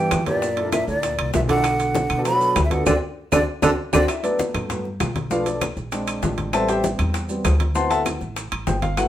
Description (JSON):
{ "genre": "Afro-Cuban jazz", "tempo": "196 BPM", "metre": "4/4", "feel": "straight", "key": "G major", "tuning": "A4 = 440 Hz", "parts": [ { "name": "breathy hollow jazz flute", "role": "melody", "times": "0.0-4.0 s", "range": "D5 to B5", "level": "-23 LUFS", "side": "right 1 dB", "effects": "none" }, { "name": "breathy tenor saxophone", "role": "second line", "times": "0.0-4.0 s", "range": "A#2 to F#3", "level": "-24 LUFS", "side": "right 2 dB", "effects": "none" }, { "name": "warm baby grand piano", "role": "accompaniment", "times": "0.0-9.1 s", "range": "F3 to C6", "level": "-24 LUFS", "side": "left 1 dB", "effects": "none" }, { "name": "upright bass", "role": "bass", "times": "0.0-9.1 s", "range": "G1 to B2", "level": "-26 LUFS", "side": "equal", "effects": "none" }, { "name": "bongos", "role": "percussion", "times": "0.1-9.1 s", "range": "none", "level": "-31 LUFS", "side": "left 5 dB", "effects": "none" }, { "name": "claves", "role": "percussion", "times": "0.1-9.1 s", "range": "none", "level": "-30 LUFS", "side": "left 4 dB", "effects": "none" }, { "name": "congas", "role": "percussion", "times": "0.1-9.1 s", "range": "none", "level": "-29 LUFS", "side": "left 3 dB", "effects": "none" }, { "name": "maracas", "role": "percussion", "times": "0.1-9.1 s", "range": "none", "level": "-36 LUFS", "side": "right 5 dB", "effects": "none" }, { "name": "timbales", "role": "percussion", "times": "0.1-9.1 s", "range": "none", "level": "-29 LUFS", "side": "right 5 dB", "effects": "none" } ], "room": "moderate studio reverb, RT60 0.7 s", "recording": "band playing live in one room", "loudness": "-19 LUFS", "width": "side -12 dB against mid", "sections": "0.0-4.1 A section; 4.1-9.1 B section", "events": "band accent 2.9-4.1; grand piano solo 4.1-9.1", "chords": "0.4 F#7alt; 1.6 Bm7; 2.9 D7; 4.1 Gmaj9; 5.3 Bm7b5; 5.9 Bb9; 6.5 Am9; 7.8 D13" }